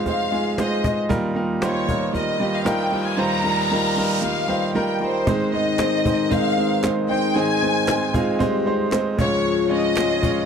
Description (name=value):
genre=piano-driven pop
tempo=115 BPM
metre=4/4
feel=straight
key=Ab major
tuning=A4 = 442 Hz
part: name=rich symphonic violin section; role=melody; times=0.0-10.5 s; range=C5 to Bb5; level=-24 LUFS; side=left 1 dB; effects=none
part: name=clear grand piano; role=accompaniment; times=0.0-10.5 s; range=Db2 to Eb5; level=-21 LUFS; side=right 2 dB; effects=none
part: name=cajon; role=drums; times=0.1-10.4 s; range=none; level=-27 LUFS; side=left 1 dB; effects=none
part: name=riser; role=sound effects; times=2.1-4.2 s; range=none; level=-32 LUFS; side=left 1 dB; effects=none
part: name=mellow French horn section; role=second line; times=5.3-10.5 s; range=Eb3 to G4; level=-24 LUFS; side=left 12 dB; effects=none
part: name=group handclap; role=percussion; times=5.8-10.1 s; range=none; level=-36 LUFS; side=right 7 dB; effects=none
room=small room reverb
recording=dry, close 1970s-style studio recording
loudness=-18 LUFS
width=side -7 dB against mid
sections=0.0-5.3 A section; 5.3-10.5 B section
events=riser 2.1-5.3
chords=0.0 Fm7; 1.1 Ebadd9; 5.3 Ab; 9.2 Db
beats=0.06 0.58 | 1.10 1.62 2.14 2.67 | 3.19 3.71 4.23 4.75 | 5.27 5.80 6.32 6.84 | 7.36 7.88 8.40 8.93 | 9.45 9.97